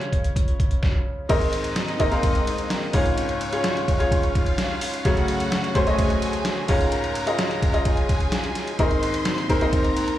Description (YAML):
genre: piano-driven pop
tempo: 128 BPM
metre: 4/4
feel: straight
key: Db major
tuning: A4 = 440 Hz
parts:
  - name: bright upright piano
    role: accompaniment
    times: 0.0-10.2 s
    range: Db2 to F5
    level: -24 LUFS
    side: left 1 dB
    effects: plate reverb
  - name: sweeping resonant pad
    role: sustained chords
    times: 0.0-10.2 s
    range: Ab3 to Db5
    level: -33 LUFS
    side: equal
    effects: chorus, tremolo, plate reverb
  - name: trip hop sampler-style drum kit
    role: drums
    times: 0.0-10.2 s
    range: crash cymbal, hi-hat, kick drum, ride cymbal, snare drum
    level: -23 LUFS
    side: equal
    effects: none
  - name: warm studio violin section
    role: second line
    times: 1.3-10.2 s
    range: Db4 to C6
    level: -31 LUFS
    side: right 1 dB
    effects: digital delay, plate reverb, slapback echo
room: light reverb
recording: live gig heard through the venue's PA, club reverb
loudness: -20 LUFS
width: side -13 dB against mid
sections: 0.0-1.3 A section; 1.3-10.2 B section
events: upright piano solo 0.0-1.3; stop 0.8-1.3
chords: 0.0 Db; 1.3 Abadd9; 2.9 Db; 5.1 Gbmadd9; 6.7 Db; 8.8 Abadd9